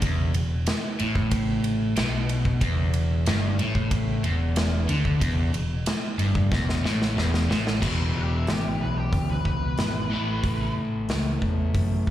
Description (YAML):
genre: blues rock power trio and southern rock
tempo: 92 BPM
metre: 4/4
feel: straight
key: unclear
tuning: A4 = 439 Hz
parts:
  - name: crunchy overdriven guitar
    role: riff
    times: 0.0-12.1 s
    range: E2 to A3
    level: -27 LUFS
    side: equal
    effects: none
  - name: overdriven picked electric bass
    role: bass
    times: 0.0-12.1 s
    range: E1 to F#2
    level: -26 LUFS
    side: equal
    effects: none
  - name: big rock drum kit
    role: drums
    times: 0.0-12.1 s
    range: crash cymbal, hi-hat, kick drum, ride cymbal, snare drum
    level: -27 LUFS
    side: equal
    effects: none
  - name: octave-fuzz lead guitar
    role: melody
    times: 8.2-10.7 s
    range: E4 to B4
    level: -34 LUFS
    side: left 2 dB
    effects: distortion, slapback echo
room: small room ambience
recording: live gig heard through the venue's PA, club reverb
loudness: -22 LUFS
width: side -12 dB against mid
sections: 0.0-7.8 A section; 7.8-12.1 B section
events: drum fill 6.5-7.8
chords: 0.0 E5; 7.8 E; 10.1 A